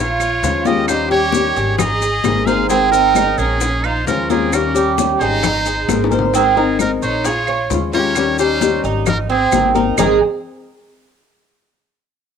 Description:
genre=latin, Cuban son and guajira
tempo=132 BPM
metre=4/4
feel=straight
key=Ab major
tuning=A4 = 436 Hz
part: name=trumpet with metal mute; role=melody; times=0.0-10.2 s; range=Ab4 to F5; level=-20 LUFS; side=right 1 dB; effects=cassette tape
part: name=clear studio violin section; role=second line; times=0.0-10.2 s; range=C4 to Ab4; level=-25 LUFS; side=right 1 dB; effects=cassette tape, plate reverb
part: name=flamenco guitar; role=accompaniment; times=0.0-10.2 s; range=Eb3 to Bb4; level=-19 LUFS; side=left 8 dB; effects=cassette tape, plate reverb
part: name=Cuban tres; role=arpeggios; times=0.0-10.2 s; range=Ab3 to Db5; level=-19 LUFS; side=right 11 dB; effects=cassette tape, plate reverb
part: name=upright bass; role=bass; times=0.0-10.2 s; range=Ab1 to Eb2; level=-24 LUFS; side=right 1 dB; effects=none
part: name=claves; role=percussion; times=0.2-10.1 s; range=none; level=-25 LUFS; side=right 15 dB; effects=none
part: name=congas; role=percussion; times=0.2-10.1 s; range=none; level=-22 LUFS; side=left 11 dB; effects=none
part: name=maracas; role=percussion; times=0.2-10.1 s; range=none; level=-28 LUFS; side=left 12 dB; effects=none
part: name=bongos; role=percussion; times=0.4-10.1 s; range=none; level=-26 LUFS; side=left 9 dB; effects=none
room=light reverb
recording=home recording on cassette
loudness=-13 LUFS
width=side -7 dB against mid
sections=0.0-6.3 A section; 6.3-10.0 B section; 10.0-11.8 C section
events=drum fill 5.9-6.3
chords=0.0 Bbm7; 0.9 Eb7; 1.8 Abadd9; 3.6 Bbm7; 4.5 Eb7; 5.4 Abadd9; 7.3 Bbm7; 8.2 Eb7; 9.1 Abadd9; 10.0 Ab5

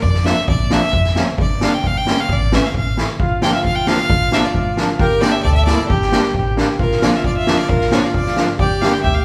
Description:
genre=klezmer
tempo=133 BPM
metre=2/4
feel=straight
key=unclear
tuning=A4 = 440 Hz
part: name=clear violin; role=melody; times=0.0-9.2 s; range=G4 to G5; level=-23 LUFS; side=equal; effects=none
part: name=upright bass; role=bass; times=0.0-9.2 s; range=G1 to F2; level=-24 LUFS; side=equal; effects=none
part: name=street-band drum kit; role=drums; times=0.0-9.1 s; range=kick drum, snare drum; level=-21 LUFS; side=equal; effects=none
part: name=accordion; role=accompaniment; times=0.2-8.9 s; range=E3 to E4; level=-24 LUFS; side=equal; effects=light tremolo tuning
part: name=accordion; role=second line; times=3.2-9.2 s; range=F4 to A4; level=-24 LUFS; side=equal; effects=none
room=wet large studio reverb, RT60 1.2 s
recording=band playing live in one room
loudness=-16 LUFS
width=mono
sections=0.0-6.8 A section; 6.8-9.2 A section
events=none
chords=0.0 Bb; 1.4 Gm; 2.3 A5; 3.2 Bb; 5.0 Gm; 6.8 Bb; 8.6 Gm

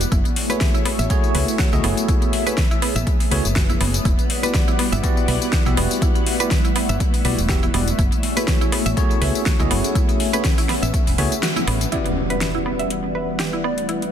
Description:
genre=deep house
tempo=122 BPM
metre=4/4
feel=swing 55% on 16ths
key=unclear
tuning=A4 = 440 Hz
part: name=airy breathy pad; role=sustained chords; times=0.0-14.1 s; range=E3 to F#5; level=-28 LUFS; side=left 1 dB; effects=chorus, phaser, sidechain pumping
part: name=fingered electric bass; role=bass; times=0.0-11.8 s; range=E1 to C#2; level=-22 LUFS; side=equal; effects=sidechain pumping
part: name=deep house drum kit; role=drums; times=0.0-14.1 s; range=hi-hat, snare drum, tambourine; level=-25 LUFS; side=left 2 dB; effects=overdrive, small room ambience
part: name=granular cloud pad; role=texture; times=0.0-14.1 s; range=A3 to F#5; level=-28 LUFS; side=left 1 dB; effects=built-in reverb, sidechain pumping
part: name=mallet-like synth pluck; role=arpeggios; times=0.1-14.0 s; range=B3 to E5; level=-27 LUFS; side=right 4 dB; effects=chorus, sidechain pumping, digital delay
part: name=electronic kick drum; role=drums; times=0.1-11.0 s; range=none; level=-20 LUFS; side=equal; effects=overdrive, small room ambience
part: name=congas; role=percussion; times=0.1-11.7 s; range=none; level=-33 LUFS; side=left 4 dB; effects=none
part: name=bell-like tine electric piano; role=stabs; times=0.5-14.1 s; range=A3 to E5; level=-26 LUFS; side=equal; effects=fast stereo tremolo, vintage 12-bit sampler grit, sidechain pumping, digital delay
part: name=impact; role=sound effects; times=11.9-13.9 s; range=none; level=-28 LUFS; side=equal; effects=none
part: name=soft struck synth lead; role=melody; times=13.6-13.8 s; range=D5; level=-27 LUFS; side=left 1 dB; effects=chorus, digital delay
room=light reverb, digital ambience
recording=dense, heavily limited modern master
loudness=-17 LUFS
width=side -9 dB against mid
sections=0.0-11.9 A section; 11.9-14.1 B section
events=kick drops out 11.4-11.9; band accent 11.4; impact 11.9-13.9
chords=0.1 F#m9; 4.1 Em9; 8.0 F#m9; 11.9 Em9

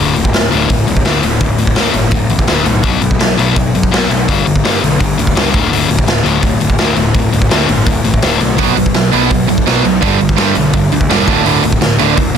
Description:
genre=punk rock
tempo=167 BPM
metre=4/4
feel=straight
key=D major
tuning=A4 = 441 Hz
part: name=sludgy distorted guitar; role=riff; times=0.0-12.4 s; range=D2 to B3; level=-14 LUFS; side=left 6 dB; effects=overdrive
part: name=fuzz picked electric bass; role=bass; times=0.0-12.4 s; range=D1 to G2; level=-19 LUFS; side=right 1 dB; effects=overdrive
part: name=raw garage drum kit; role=drums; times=0.2-12.3 s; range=hi-hat, kick drum, snare drum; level=-14 LUFS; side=right 1 dB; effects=none
part: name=crunchy overdriven guitar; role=riff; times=8.6-12.4 s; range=D2 to B3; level=-14 LUFS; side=right 16 dB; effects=none
room=light reverb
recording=dense, heavily limited modern master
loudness=-10 LUFS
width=side -8 dB against mid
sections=0.0-12.4 A section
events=none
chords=0.0 D5; 2.8 B5; 4.3 G5; 5.5 D5; 8.6 B5; 10.0 G5; 11.3 D5

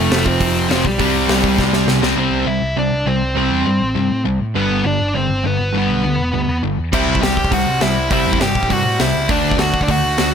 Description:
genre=punk rock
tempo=203 BPM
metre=4/4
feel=straight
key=unclear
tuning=A4 = 440 Hz
part: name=dark smooth lead guitar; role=melody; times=0.0-10.3 s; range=G3 to G5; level=-19 LUFS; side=equal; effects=overdrive, ping-pong delay
part: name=distorted electric guitar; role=riff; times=0.0-2.2, 6.9-10.3 s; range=F2 to D4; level=-23 LUFS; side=equal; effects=overdrive
part: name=overdriven semi-hollow guitar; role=riff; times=0.0-10.3 s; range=F2 to D4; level=-22 LUFS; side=right 17 dB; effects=none
part: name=sludgy distorted guitar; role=riff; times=0.0-10.3 s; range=F2 to D4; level=-21 LUFS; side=left 11 dB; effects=overdrive
part: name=overdriven picked electric bass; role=bass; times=0.0-10.3 s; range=E1 to A2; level=-22 LUFS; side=equal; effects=none
part: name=big rock drum kit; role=drums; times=0.1-2.1, 6.9-10.3 s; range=crash cymbal, hi-hat, kick drum, snare drum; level=-20 LUFS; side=equal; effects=none
room=little or no reverb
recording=none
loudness=-14 LUFS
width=side -7 dB against mid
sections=0.0-2.2 A section; 2.2-10.3 B section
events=drum fill 1.6-2.2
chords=0.0 F; 1.0 C5; 2.2 C; 4.6 G; 6.9 C; 9.3 D

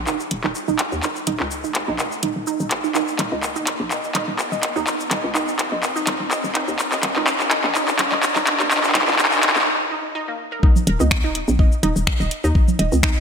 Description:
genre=minimal techno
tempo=125 BPM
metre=4/4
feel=swing 54% on 16ths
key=unclear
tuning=A4 = 441 Hz
part: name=hollow knocking FM bass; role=bass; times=0.0-13.2 s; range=Eb1 to Eb2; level=-23 LUFS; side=left 1 dB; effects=sidechain pumping
part: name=riser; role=sound effects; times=0.0-9.7 s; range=none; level=-31 LUFS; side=equal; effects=none
part: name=resonant blip pluck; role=riff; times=0.1-13.1 s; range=Bb3 to Eb5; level=-26 LUFS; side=right 3 dB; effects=chorus, sidechain pumping, digital delay
part: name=garage drum kit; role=drums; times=0.1-13.1 s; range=cabasa, finger snaps, handclaps, hi-hat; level=-20 LUFS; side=left 1 dB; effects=none
part: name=electronic kick drum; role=drums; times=10.6-13.1 s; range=none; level=-16 LUFS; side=left 1 dB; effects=none
part: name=congas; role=percussion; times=10.8-13.0 s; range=none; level=-26 LUFS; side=right 6 dB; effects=digital delay
room=wet lush hall reverb, RT60 1.8 s, digital ambience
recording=bright 1980s-style digital production, high-pass filter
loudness=-18 LUFS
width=side -7 dB against mid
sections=0.0-10.6 A section; 10.6-13.2 B section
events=build-up 0.0-10.6; drum fill 0.0-9.7; filter sweep on synth pluck 0.0-10.6; riser 0.0-9.7; break 9.7-10.6; drop 10.6-13.2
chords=0.0 Eb5

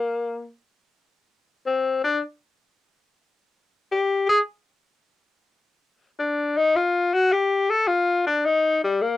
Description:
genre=jazz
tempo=free time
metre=none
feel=none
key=Bb major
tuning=A4 = 441 Hz
part: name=clear tenor saxophone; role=solo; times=0.0-9.2 s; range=G3 to A4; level=-20 LUFS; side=left 3 dB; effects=cassette tape
room=wet booth ambience, RT60 0.3 s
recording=home recording on cassette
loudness=-20 LUFS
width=side -15 dB against mid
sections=0.0-9.2 A section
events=none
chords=none

